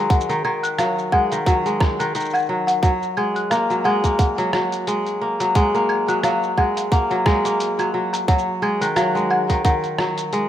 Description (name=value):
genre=folktronica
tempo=88 BPM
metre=4/4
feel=swing 56% on 16ths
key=F# major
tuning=A4 = 437 Hz
part: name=folk marimba with medium mallets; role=second line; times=0.0-9.8 s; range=E#5 to F#6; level=-24 LUFS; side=left 1 dB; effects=vintage 12-bit sampler grit, digital delay
part: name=kora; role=arpeggios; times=0.0-10.5 s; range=D#3 to A#3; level=-20 LUFS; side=equal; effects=digital delay
part: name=electronic kick drum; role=drums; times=0.1-9.8 s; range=none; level=-19 LUFS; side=right 1 dB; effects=overdrive
part: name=lo-fi sampler-style drum kit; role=drums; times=0.1-10.5 s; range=claves, hi-hat, rim click, shaker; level=-29 LUFS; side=right 1 dB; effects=none
room=moderate lush hall reverb, RT60 2.3 s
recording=rough home demo mix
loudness=-17 LUFS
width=side -11 dB against mid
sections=0.0-10.5 A section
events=none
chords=0.0 G#5; 2.8 F#add9; 8.3 G#5